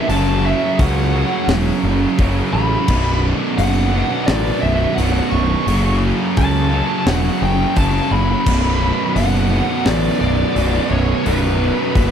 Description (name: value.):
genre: heavy metal.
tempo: 86 BPM.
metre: 4/4.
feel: straight.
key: B minor.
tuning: A4 = 439 Hz.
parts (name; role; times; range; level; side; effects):
high-gain lead guitar; melody; 0.0-12.1 s; B4 to C#6; -22 LUFS; equal; distortion, slapback echo.
pipe organ, soft reed; sustained chords; 0.0-12.1 s; D3 to D5; -31 LUFS; left 2 dB; none.
heavy high-gain guitar; riff; 0.0-12.1 s; B1 to F#3; -22 LUFS; right 14 dB; distortion.
high-gain distorted guitar; riff; 0.0-12.1 s; B1 to C#3; -24 LUFS; left 13 dB; distortion.
scooped high-gain guitar; riff; 0.0-12.1 s; B1 to F#3; -26 LUFS; left 1 dB; distortion.
fuzz picked electric bass; bass; 0.1-12.1 s; B0 to C#2; -18 LUFS; left 1 dB; overdrive.
tight metal drum kit; drums; 0.1-12.1 s; crash cymbal, hi-hat, kick drum, snare drum; -22 LUFS; left 1 dB; none.
room: little or no reverb.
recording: dry, close 1970s-style studio recording.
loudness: -14 LUFS.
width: side -8 dB against mid.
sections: 0.0-12.1 A section.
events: half time 0.0-12.1.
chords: 0.1 F#m; 2.9 Bm; 5.7 F#m; 8.5 Bm.